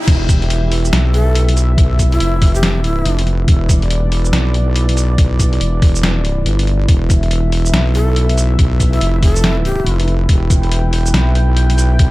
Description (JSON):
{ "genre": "deep dubstep", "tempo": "141 BPM", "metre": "4/4", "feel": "swing 62% on 16ths, half-time", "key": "E phrygian", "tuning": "A4 = 441 Hz", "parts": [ { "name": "dark analog pad", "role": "sustained chords", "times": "0.0-12.1 s", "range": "E4 to G5", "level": "-23 LUFS", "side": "right 1 dB", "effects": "chorus" }, { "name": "wobble bass", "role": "bass", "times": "0.1-12.1 s", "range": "E1 to B1", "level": "-14 LUFS", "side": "equal", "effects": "chorus" }, { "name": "electronic kick drum", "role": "drums", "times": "0.1-12.1 s", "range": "none", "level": "-12 LUFS", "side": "equal", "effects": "small room ambience" }, { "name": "trip hop sampler-style drum kit", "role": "drums", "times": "0.1-12.1 s", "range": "crash cymbal, hi-hat, shaker, snare drum", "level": "-20 LUFS", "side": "equal", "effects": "low-pass filter on hats, small room ambience, low-pass filter on cymbals, low-pass filter on perc, low-pass filter on snare" }, { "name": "breathy bright long shakuhachi", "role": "melody", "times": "1.1-3.3, 8.0-10.1 s", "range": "E4 to A4", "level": "-25 LUFS", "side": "equal", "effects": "dub echo" } ], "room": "little or no reverb", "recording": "none", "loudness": "-12 LUFS", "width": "side -19 dB against mid", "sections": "0.1-12.1 A section", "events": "drop 0.1-12.1", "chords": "0.1 Em" }